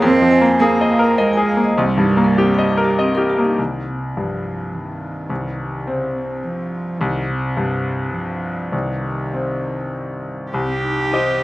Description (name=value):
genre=neoclassical piano and strings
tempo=98-107 BPM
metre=3/4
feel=rubato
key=unclear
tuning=A4 = 440 Hz
part: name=warm cello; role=second line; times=0.0-11.4 s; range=C3 to G4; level=-21 LUFS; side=right 2 dB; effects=none
part: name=bright concert grand piano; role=accompaniment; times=0.0-11.4 s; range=C2 to Eb5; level=-19 LUFS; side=left 2 dB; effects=none
part: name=vibraphone with medium mallets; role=arpeggios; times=0.0-3.5, 10.5-11.4 s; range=C4 to Ab5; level=-23 LUFS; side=right 1 dB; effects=none
room=light reverb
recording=recorded outdoors, with no room sound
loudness=-16 LUFS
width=side -17 dB against mid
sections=0.0-3.6 A section; 3.6-10.5 B section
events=none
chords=0.0 Bb7sus4/F; 1.8 Cm7; 3.6 Cm